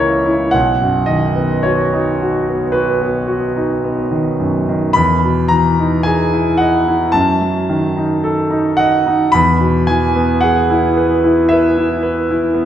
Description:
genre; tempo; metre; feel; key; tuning
classical, romantic nocturne for solo piano; 55 BPM; 4/4; rubato; unclear; A4 = 441 Hz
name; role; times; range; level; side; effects
clear concert grand piano; solo; 0.0-12.7 s; B1 to B5; -12 LUFS; equal; none
room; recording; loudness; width
wet recital hall reverb, RT60 1.6 s; none; -12 LUFS; side -10 dB against mid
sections
0.0-12.7 A section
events
none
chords
0.0 A#dim/C#; 0.5 B; 4.9 Emaj7; 7.1 D#dim/F#; 9.3 E

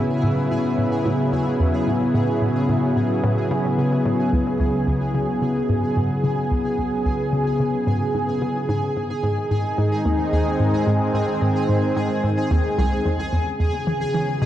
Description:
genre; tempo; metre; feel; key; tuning
ambient; 110 BPM; 4/4; straight; C# minor; A4 = 441 Hz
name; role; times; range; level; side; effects
lush unison pad; sustained chords; 0.0-14.5 s; C#3 to G#4; -21 LUFS; equal; chorus
hollow square pluck; riff; 0.0-14.5 s; B#1 to E3; -23 LUFS; equal; chorus, ping-pong delay
pulsing gated texture; texture; 0.0-14.5 s; G#4 to G#5; -32 LUFS; left 1 dB; chorus, built-in reverb
room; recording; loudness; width
wet concert hall reverb, RT60 2.0 s; worn, warbling old tape, cassette tape, warbly pitch drift; -19 LUFS; side -12 dB against mid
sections
0.0-14.5 A section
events
fade-in on synth texture 0.0-14.5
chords
0.0 Aadd9; 4.3 C#m; 8.7 G#; 13.1 Esus2

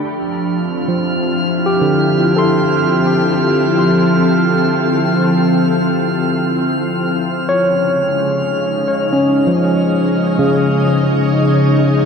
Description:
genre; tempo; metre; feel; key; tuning
ambient; 65 BPM; 4/4; straight; unclear; A4 = 440 Hz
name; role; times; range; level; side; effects
soft additive organ-like pad; sustained chords; 0.0-12.1 s; Db3 to G5; -16 LUFS; equal; ensemble chorus, built-in reverb
barky tine electric piano; arpeggios; 0.0-12.1 s; Db3 to C6; -16 LUFS; equal; medium stereo tremolo, ping-pong delay
drifting glass-harmonics texture; texture; 0.3-12.1 s; F6; -24 LUFS; right 2 dB; chorus, built-in reverb
room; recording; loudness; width
wet huge ambient reverb, RT60 7.6 s; in a vast, echoing space; -12 LUFS; side -6 dB against mid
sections
0.0-12.1 A section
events
fade-out on synth texture 0.0-12.1; filter sweep on ambient pad 0.0-12.1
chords
0.0 Fmaj7; 7.5 Dbsus2

